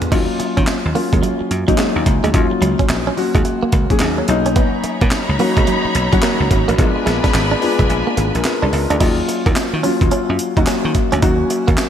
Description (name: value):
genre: R&B, new jack swing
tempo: 108 BPM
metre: 4/4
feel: swing 64% on 16ths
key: Eb minor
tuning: A4 = 441 Hz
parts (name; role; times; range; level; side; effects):
- dark grand piano; accompaniment; 0.0-11.9 s; Gb3 to D5; -19 LUFS; left 3 dB; wide subtle chorus
- breakbeat sampler-style drum kit; drums; 0.0-11.9 s; crash cymbal, handclaps, hi-hat, kick drum, snare drum, tambourine, toms; -18 LUFS; equal; gated reverb
- direct-recorded clean electric guitar; riff; 0.1-11.7 s; Gb3 to Eb4; -23 LUFS; right 5 dB; lush chorus
- dry thumbed slap bass; bass; 0.1-11.8 s; F1 to Eb3; -19 LUFS; equal; none
- cowbell; percussion; 0.1-11.9 s; none; -33 LUFS; right 3 dB; none
- clear studio string section; sustained chords; 4.6-9.0 s; D4 to B5; -22 LUFS; left 1 dB; none
room: moderate lush hall reverb, RT60 2.0 s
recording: bright 1980s-style digital production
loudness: -14 LUFS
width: side -9 dB against mid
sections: 0.1-9.0 A section; 9.0-11.9 B section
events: kick muted 7.9-9.0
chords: 0.1 Ebm9; 4.3 Bmaj9; 6.8 Bb7b9; 9.0 Ebm9